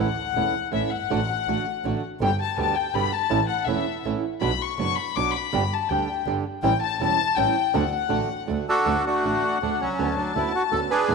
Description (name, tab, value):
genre	tango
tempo	162 BPM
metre	3/4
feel	rubato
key	D major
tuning	A4 = 440 Hz
part	warm chamber violin section	second line	0.0-11.1 s	E5 to D6	-25 LUFS	left 11 dB	none
part	flamenco guitar	accompaniment	0.0-11.1 s	B2 to G4	-27 LUFS	right 9 dB	none
part	clear double bass	bass	0.0-11.1 s	E1 to E2	-30 LUFS	right 1 dB	none
part	bandoneon	melody	8.7-11.1 s	F#3 to B4	-23 LUFS	right 2 dB	none
room	moderate plate reverb, RT60 2.6 s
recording	1960s-style stereo with parts hard left and right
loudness	-22 LUFS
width	side -4 dB against mid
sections	0.0-8.9 A section; 8.9-11.1 B section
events	violin section solo 0.0-8.9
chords	0.0 A; 1.1 D/A; 2.2 G; 3.3 A; 4.4 Bm; 5.5 G5; 6.6 A7; 7.7 D; 10.0 Bmadd9/D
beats	0.35 0.73 | 1.10 1.47 1.84 | 2.20 2.57 2.94 | 3.30 3.67 4.05 | 4.42 4.80 5.17 | 5.53 5.90 6.27 | 6.63 7.00 7.37 | 7.74 8.12 8.49 | 8.87 9.24 9.61 | 9.98 10.35 10.72 | 11.09